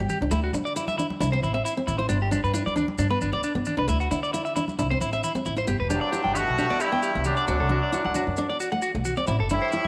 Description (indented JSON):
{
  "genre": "highlife guitar band",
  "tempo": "134 BPM",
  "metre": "4/4",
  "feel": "straight",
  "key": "G major",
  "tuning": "A4 = 440 Hz",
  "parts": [
    { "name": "fingerpicked steel-string acoustic guitar", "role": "accompaniment", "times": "0.0-9.9 s", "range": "G3 to E4", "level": "-33 LUFS", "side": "equal", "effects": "none" },
    { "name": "upright bass", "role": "bass", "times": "0.0-9.9 s", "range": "E1 to D3", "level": "-31 LUFS", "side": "equal", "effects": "none" },
    { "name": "electric guitar at the edge of break-up", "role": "arpeggios", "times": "0.1-9.9 s", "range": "D4 to G5", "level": "-30 LUFS", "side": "equal", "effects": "slapback echo" },
    { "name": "congas", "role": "percussion", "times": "0.1-9.9 s", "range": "none", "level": "-38 LUFS", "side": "equal", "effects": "none" },
    { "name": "maracas", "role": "percussion", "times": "0.1-9.8 s", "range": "none", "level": "-43 LUFS", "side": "equal", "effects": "none" },
    { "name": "brilliant horn section", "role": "melody", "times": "5.9-9.9 s", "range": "F#3 to F#4", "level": "-29 LUFS", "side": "equal", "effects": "none" },
    { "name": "trombone with straight mute", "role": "second line", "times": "5.9-9.9 s", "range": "F#2 to B2", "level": "-37 LUFS", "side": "equal", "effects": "none" }
  ],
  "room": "moderate echo chamber reverb, RT60 1.9 s, small room ambience",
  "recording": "none",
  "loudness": "-25 LUFS",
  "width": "mono",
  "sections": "0.0-5.7 A section; 5.7-9.9 B section",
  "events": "none",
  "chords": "0.3 Dsus2; 1.2 C; 2.1 G; 3.9 Dsus2; 4.8 C; 5.7 G; 7.5 D; 9.3 Am"
}